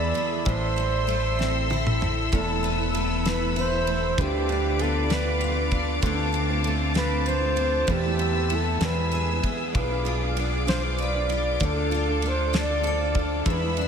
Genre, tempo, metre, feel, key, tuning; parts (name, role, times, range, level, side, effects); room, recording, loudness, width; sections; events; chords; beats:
six-eight pop ballad; 65 BPM (dotted quarters); 6/8; straight; A4 = 440 Hz
breathy flugelhorn; melody; 0.0-13.9 s; G4 to D5; -28 LUFS; right 1 dB; tape echo
picked steel-string acoustic guitar; accompaniment; 0.0-13.9 s; E2 to B4; -30 LUFS; left 1 dB; double-tracked left and right
clear studio string section; sustained chords; 0.0-13.9 s; C4 to E6; -30 LUFS; left 1 dB
deep dub fingered electric bass; bass; 0.0-13.9 s; E1 to E2; -28 LUFS; equal
damped 70s drum kit; drums; 0.1-13.9 s; kick drum, ride cymbal, snare drum, toms; -31 LUFS; equal
picked steel-string acoustic guitar; arpeggios; 2.3-13.9 s; E2 to B4; -34 LUFS; right 5 dB; wide subtle chorus, tape echo
wet cathedral reverb, RT60 5.9 s; dreamy mix soaked in reverb; -22 LUFS; side -7 dB against mid
0.0-13.9 A section
drum fill 1.4-2.3
0.5 Am; 2.3 Esus4; 4.2 Bdim/D; 6.0 Dm7; 7.9 Esus4; 8.8 E; 9.7 Bdim; 11.6 Dm
| 0.46 1.39 | 2.33 3.25 | 4.18 5.11 | 6.03 6.95 | 7.88 8.81 | 9.75 10.68 | 11.61 12.54 | 13.46